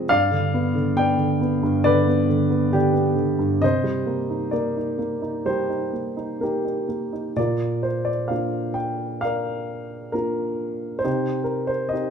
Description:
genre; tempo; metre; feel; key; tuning
classical, lyrical solo piano; 66 BPM; 4/4; rubato; C minor; A4 = 440 Hz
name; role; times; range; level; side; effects
dark baby grand piano; solo; 0.0-12.1 s; G2 to G5; -20 LUFS; equal; none
room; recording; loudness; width
moderate recital hall reverb, RT60 1.4 s; minimal, uncompressed stereo recording; -20 LUFS; side -7 dB against mid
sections
0.0-7.4 A section; 7.4-12.1 B section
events
none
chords
0.1 G7; 3.6 Cm7; 7.4 Bb; 11.0 Cm

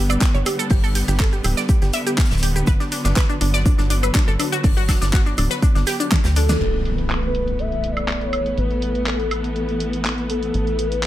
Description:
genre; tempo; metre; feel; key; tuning
progressive house; 122 BPM; 4/4; straight; unclear; A4 = 439 Hz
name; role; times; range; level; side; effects
warm symphonic string section; sustained chords; 0.0-11.1 s; D3 to B3; -26 LUFS; equal; sidechain pumping
glassy wavetable pluck; arpeggios; 0.0-6.6 s; D4 to E5; -25 LUFS; equal; chorus, sidechain pumping, digital delay
tight sequencer bass; bass; 0.0-11.1 s; D1 to D2; -22 LUFS; equal; sidechain pumping
pop drum kit; drums; 0.1-11.1 s; crash cymbal, handclaps, hi-hat, shaker, snare drum, woodblock; -25 LUFS; equal; low-pass filter on hats, low-pass filter on perc, low-pass filter on snare, low-pass filter on cymbals, low-pass filter on room
electronic kick drum; drums; 0.2-6.2 s; none; -17 LUFS; equal; none
huge arena drum kit; drums; 0.2-6.6 s; hi-hat, shaker, snare drum; -34 LUFS; left 2 dB; none
warm velvety synth lead; melody; 6.4-11.1 s; A4 to E5; -25 LUFS; left 1 dB; chorus, sidechain pumping, digital delay
impact; sound effects; 6.6-8.6 s; none; -28 LUFS; equal; none
room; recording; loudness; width
little or no reverb; none; -17 LUFS; side -14 dB against mid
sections
0.0-6.6 A section; 6.6-11.1 B section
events
drum fill 6.1-6.6; band accent 6.5; impact 6.6-8.6; filter sweep on drum 6.6-11.1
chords
0.0 G; 6.6 Asus2

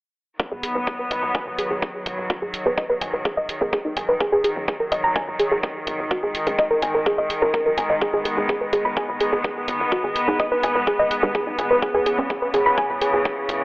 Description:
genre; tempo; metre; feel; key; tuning
melodic techno; 126 BPM; 4/4; straight; unclear; A4 = 440 Hz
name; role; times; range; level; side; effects
dark studio string section; sustained chords; 0.4-13.6 s; C#3 to B3; -25 LUFS; equal; sidechain pumping
soft round pluck; arpeggios; 0.4-13.2 s; D#4 to B5; -22 LUFS; equal; chorus, sidechain pumping, tape echo
electronic kick drum; drums; 0.4-13.3 s; none; -26 LUFS; equal; high-pass filter on kick, high-pass filter on room
tight sequencer bass; bass; 0.5-13.6 s; F#1 to G#1; -32 LUFS; equal; sidechain pumping
electronic hi-hat; drums; 0.6-13.6 s; none; -30 LUFS; equal; none
filtered dub chord stab; stabs; 0.8-13.6 s; C#3 to B4; -29 LUFS; right 1 dB; phaser, wide subtle chorus, vintage 12-bit sampler grit, sidechain pumping, tape echo
room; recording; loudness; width
moderate lush hall reverb, RT60 1.8 s, digital ambience; dry, gritty hardware recording, telephone sound; -19 LUFS; side -23 dB against mid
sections
0.4-13.6 A section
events
filter sweep on analog synth bass 0.4-13.6; filter sweep on synth arpeggio sound 0.4-13.6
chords
0.4 B; 4.2 F#6; 8.0 G#m; 11.8 C#m7

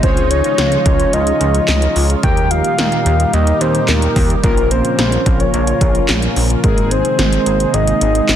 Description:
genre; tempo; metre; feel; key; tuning
synth-pop; 109 BPM; 4/4; straight; Ab major; A4 = 442 Hz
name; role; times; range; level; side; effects
soft octave-layered synth lead; melody; 0.0-8.4 s; Bb4 to G5; -18 LUFS; left 1 dB; chorus, digital delay
analog synth brass; accompaniment; 0.0-8.4 s; Ab3 to Db5; -22 LUFS; left 2 dB; chorus
sweeping resonant pad; sustained chords; 0.0-8.4 s; Bb2 to G4; -21 LUFS; right 2 dB; chorus
chorused synth bass; bass; 0.0-8.4 s; Ab1 to Eb2; -17 LUFS; equal; none
80s electronic pad drums; drums; 0.0-8.4 s; handclaps, hi-hat, kick drum, snare drum; -17 LUFS; equal; none
room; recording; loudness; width
light reverb, digital ambience; dense, heavily limited modern master; -12 LUFS; side -10 dB against mid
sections
0.0-8.4 A section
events
none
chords
0.0 Dbadd9; 2.2 Eb; 4.4 Bbm; 6.6 Abadd9

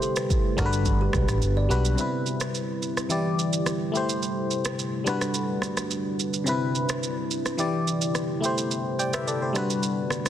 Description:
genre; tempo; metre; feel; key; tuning
afrobeats; 107 BPM; 4/4; straight; G major; A4 = 440 Hz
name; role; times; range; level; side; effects
barking FM electric piano; accompaniment; 0.0-10.3 s; C3 to G5; -27 LUFS; left 2 dB; chorus
deep dark ambient pad; sustained chords; 0.0-10.3 s; C3 to B4; -31 LUFS; right 2 dB; chorus, built-in reverb
kalimba; riff; 0.0-1.8 s; G4 to D5; -33 LUFS; right 5 dB; tape echo
afro-pop drum kit; drums; 0.0-10.3 s; kick drum, rim click, shaker; -29 LUFS; right 1 dB; soft clipping on snare
vintage muted fingered electric bass; bass; 0.6-1.9 s; G1 to B1; -24 LUFS; equal; none
room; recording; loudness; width
light reverb; dense, heavily limited modern master; -23 LUFS; side -10 dB against mid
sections
0.0-2.0 A section; 2.0-10.3 B section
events
none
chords
0.0 Am7; 0.6 Gmaj7; 2.0 Cmaj7; 3.1 Em7; 3.9 Am7; 5.1 Gmaj7; 6.5 Cmaj7; 7.6 Em7; 8.4 Am7; 9.6 Gmaj7

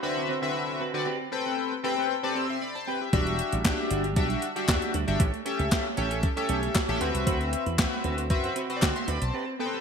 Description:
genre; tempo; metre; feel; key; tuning
early-eighties boogie funk; 116 BPM; 4/4; straight; unclear; A4 = 443 Hz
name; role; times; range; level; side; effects
chorused polysynth; accompaniment; 0.0-9.8 s; D3 to E6; -28 LUFS; left 3 dB; none
semi-hollow electric guitar; riff; 0.0-9.8 s; G3 to C5; -35 LUFS; right 6 dB; wide subtle chorus
slap bass with an envelope filter; bass; 3.1-9.3 s; E1 to D3; -30 LUFS; equal; none
crisp 8-bit digital drum machine; drums; 3.1-9.3 s; hi-hat, kick drum, snare drum; -27 LUFS; equal; overdrive, gated reverb
group handclap; percussion; 3.7-8.9 s; none; -36 LUFS; left 6 dB; none
room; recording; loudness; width
moderate lush hall reverb, RT60 1.5 s; bright 1980s-style digital production; -25 LUFS; side -6 dB against mid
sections
0.0-9.8 A section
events
break 9.3-9.8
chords
0.0 D13; 1.1 Am9/C; 3.1 Em9; 5.2 A7; 7.0 D13

